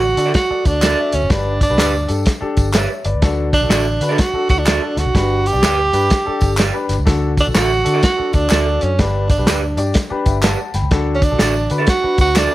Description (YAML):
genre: uptempo 1960s-style soul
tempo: 125 BPM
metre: 4/4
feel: swing 64% on 8ths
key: D major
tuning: A4 = 440 Hz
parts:
  - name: breathy tenor saxophone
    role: melody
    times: 0.0-12.5 s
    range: C#4 to G4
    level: -18 LUFS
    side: right 2 dB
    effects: none
  - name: warm concert grand piano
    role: accompaniment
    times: 0.0-12.5 s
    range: G2 to B5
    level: -23 LUFS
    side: left 4 dB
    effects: none
  - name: vintage muted fingered electric bass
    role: bass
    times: 0.0-12.5 s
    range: F#1 to D3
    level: -20 LUFS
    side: equal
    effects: none
  - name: warm soul drum kit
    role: drums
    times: 0.2-12.5 s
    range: hi-hat, kick drum, snare drum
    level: -17 LUFS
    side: equal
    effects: none
  - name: tambourine and handclaps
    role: percussion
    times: 0.2-12.5 s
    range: none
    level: -27 LUFS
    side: left 1 dB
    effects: none
  - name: electric guitar through a small old amp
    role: stabs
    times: 0.3-12.5 s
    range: F#4 to D5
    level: -22 LUFS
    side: right 6 dB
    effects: none
room: light reverb, small room ambience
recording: none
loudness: -14 LUFS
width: side -16 dB against mid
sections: 0.0-12.5 A section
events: none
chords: 0.0 D; 1.3 G; 3.2 D; 5.2 G; 7.1 D; 9.0 G; 10.9 D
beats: 0.34 0.82 | 1.30 1.78 2.27 2.75 | 3.23 3.71 4.19 4.67 | 5.15 5.63 6.11 6.59 | 7.07 7.55 8.03 8.51 | 8.99 9.47 9.95 10.43 | 10.91 11.39 11.87 12.35